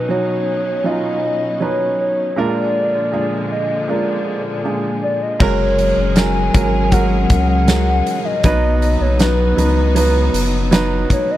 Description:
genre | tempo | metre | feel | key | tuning
pop ballad | 79 BPM | 4/4 | straight | unclear | A4 = 437 Hz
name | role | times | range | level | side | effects
hollow clarinet-like synth lead | melody | 0.0-11.4 s | B4 to Ab5 | -20 LUFS | left 1 dB | chorus
warm upright piano | accompaniment | 0.0-11.4 s | Bb1 to B4 | -20 LUFS | right 4 dB | none
warm studio string section | sustained chords | 0.0-11.4 s | Bb2 to Bb4 | -24 LUFS | left 3 dB | none
warm sub bass | bass | 5.4-11.1 s | Gb1 to Db2 | -17 LUFS | equal | none
huge arena drum kit | drums | 5.4-11.3 s | crash cymbal, hi-hat, kick drum, snare drum | -19 LUFS | equal | none
room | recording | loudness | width
small room ambience | none | -14 LUFS | side -14 dB against mid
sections
0.0-5.4 A section; 5.4-11.4 B section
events
none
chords
0.0 Badd9; 2.4 Bb7; 5.4 Gbadd9; 8.4 B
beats
0.09 0.85 1.61 | 2.37 3.13 3.89 4.65 | 5.41 6.17 6.92 7.68 | 8.44 9.20 9.96 10.72

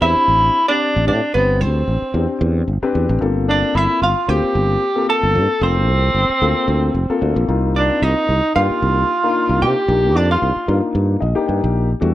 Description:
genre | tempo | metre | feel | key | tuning
jazz | 112 BPM | 4/4 | swing 55% on 16ths | unclear | A4 = 443 Hz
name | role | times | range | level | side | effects
breathy tenor saxophone | melody | 0.0-10.8 s | B3 to A4 | -17 LUFS | right 1 dB | slapback echo, plate reverb
archtop guitar, miked and amplified | second line | 0.0-10.8 s | B4 to A5 | -23 LUFS | right 3 dB | plate reverb
dark concert grand piano | accompaniment | 0.0-12.1 s | G3 to G5 | -22 LUFS | left 4 dB | plate reverb
sustaining fretless electric bass | bass | 0.0-12.1 s | F1 to C3 | -18 LUFS | equal | none
room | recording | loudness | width
moderate club reverb, RT60 0.7 s | none | -14 LUFS | side -14 dB against mid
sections
0.0-12.1 A section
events
grand piano fill 11.0-12.0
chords
0.0 Am11; 3.2 Gm11; 7.5 Cm11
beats
0.29 0.82 | 1.35 1.89 2.42 2.95 | 3.48 4.02 4.55 5.08 | 5.62 6.15 6.68 7.22 | 7.75 8.28 8.82 9.35 | 9.88 10.42 10.95 11.49 | 12.02

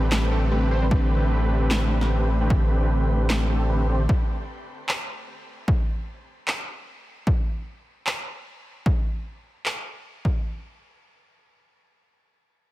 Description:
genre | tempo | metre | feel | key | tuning
future bass | 151 BPM | 4/4 | half-time | A minor | A4 = 441 Hz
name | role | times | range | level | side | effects
supersaw chords | riff | 0.0-4.0 s | D3 to C5 | -27 LUFS | right 1 dB | sidechain pumping, low-pass filter, digital delay
saturated sub bass | bass | 0.0-4.1 s | A1 | -22 LUFS | equal | sidechain pumping
soft round pluck | accompaniment | 0.1-1.1 s | G3 to B4 | -34 LUFS | right 1 dB | none
electronic snare drum and handclaps | drums | 0.1-9.7 s | none | -29 LUFS | equal | overdrive
electronic kick drum | drums | 0.9-10.3 s | none | -22 LUFS | equal | overdrive
room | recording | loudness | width
digital ambience | none | -22 LUFS | side -16 dB against mid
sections
0.0-10.4 A section; 10.4-12.7 B section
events
filter sweep on supersaw synth 0.0-4.1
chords
0.0 Am11; 4.1 N.C.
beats
0.12 0.51 | 0.91 1.31 1.71 2.10 | 2.50 2.90 3.30 3.69 | 4.09 4.49 4.88 5.28 | 5.68 6.08 6.47 6.87 | 7.27 7.67 8.06 8.46 | 8.86 9.26 9.65 10.05

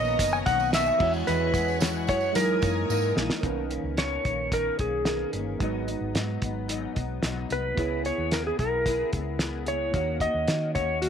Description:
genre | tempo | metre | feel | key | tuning
indie pop, bedroom pop | 111 BPM | 4/4 | straight | B major | A4 = 441 Hz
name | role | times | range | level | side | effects
clean lap steel guitar | melody | 0.0-11.1 s | F#4 to G#5 | -27 LUFS | equal | wide subtle chorus, tape echo
fingerpicked steel-string acoustic guitar | accompaniment | 0.0-11.1 s | F#2 to G#4 | -34 LUFS | left 11 dB | analog chorus, warbly pitch drift
tine electric piano | accompaniment | 0.0-11.1 s | G#3 to C#5 | -34 LUFS | right 13 dB | none
ensemble organ-string | sustained chords | 0.0-3.4 s | B3 to D#6 | -35 LUFS | left 1 dB | ensemble chorus
vintage muted fingered electric bass | bass | 0.0-11.1 s | F#1 to F#3 | -32 LUFS | equal | none
tambourine | percussion | 0.0-3.4 s | none | -41 LUFS | right 15 dB | none
cloth-damped thuddy drum kit | drums | 0.2-11.1 s | crash cymbal, hi-hat, kick drum, snare drum | -29 LUFS | equal | none
room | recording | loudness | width
light reverb, studio reverb | 1960s-style stereo with parts hard left and right | -24 LUFS | side -8 dB against mid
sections
0.0-3.4 A section; 3.4-11.1 B section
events
drum fill 2.9-3.4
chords
0.0 Bmaj9; 1.0 E69; 2.4 F#13; 3.4 Bmaj9; 5.6 G#m7; 7.8 C#m7; 9.9 D#m7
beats
0.19 0.73 | 1.27 1.81 2.36 2.90 | 3.44 3.98 4.52 5.06 | 5.61 6.15 6.69 7.23 | 7.77 8.31 8.85 9.39 | 9.94 10.48 11.02

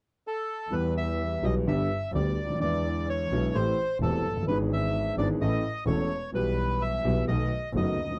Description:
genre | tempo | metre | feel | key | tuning
tango | 128 BPM | 4/4 | rubato | unclear | A4 = 439 Hz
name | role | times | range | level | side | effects
bandoneon | melody | 0.3-8.2 s | A4 to E5 | -34 LUFS | equal | none
warm concert grand piano | accompaniment | 0.7-8.2 s | E1 to A4 | -31 LUFS | equal | none
warm double bass | bass | 0.7-8.2 s | E1 to E2 | -33 LUFS | equal | none
room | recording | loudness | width
light reverb | dry, close 1970s-style studio recording | -28 LUFS | mono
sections
0.7-8.2 A section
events
none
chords
0.0 N.C.; 0.7 Em; 1.7 G; 2.6 E7; 3.5 Am7; 4.5 E7/G#; 5.4 A; 6.3 Em/B; 7.3 B7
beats
0.24 | 0.71 1.19 1.67 2.14 | 2.61 3.07 3.54 4.01 | 4.48 4.94 5.41 5.87 | 6.34 6.81 7.28 7.75

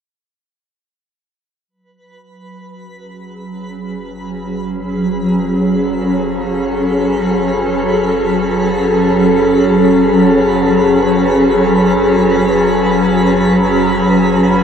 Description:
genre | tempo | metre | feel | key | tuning
ambient | free time | none | none | F# minor | A4 = 438 Hz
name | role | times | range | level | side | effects
granular cloud pad | sustained chords | 3.4-14.6 s | F#3 to B4 | -12 LUFS | equal | built-in reverb
deep rumbling drone | bass | 3.8-14.6 s | F#1 | -32 LUFS | equal | built-in reverb
twinkling granular texture | texture | 2.1-14.6 s | B4 to B5 | -24 LUFS | right 1 dB | built-in reverb
room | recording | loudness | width
wet shimmer reverb, RT60 8.8 s | worn, warbling old tape, cassette tape, warbly pitch drift | -11 LUFS | side -7 dB against mid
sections
1.7-14.6 A section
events
fade-in on synth drone 1.7-14.6; fade-in on synth texture 1.7-14.6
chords
1.7 F#m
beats
free time

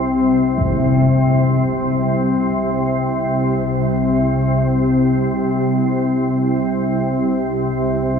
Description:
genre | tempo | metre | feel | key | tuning
dark ambient drone | free time | none | none | unclear | A4 = 440 Hz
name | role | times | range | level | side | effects
organ-like drone | drone | 0.0-8.2 s | C2 to C3 | -15 LUFS | left 1 dB | ensemble chorus, built-in reverb
impact | percussion | 0.6-0.8 s | none | -27 LUFS | left 1 dB | low-pass filter on sfx
room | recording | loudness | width
wet huge ambient reverb, RT60 7.7 s | worn, warbling old tape, cassette tape, warbly pitch drift, studio ambience | -15 LUFS | side -6 dB against mid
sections
0.0-8.2 A section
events
none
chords
none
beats
free time

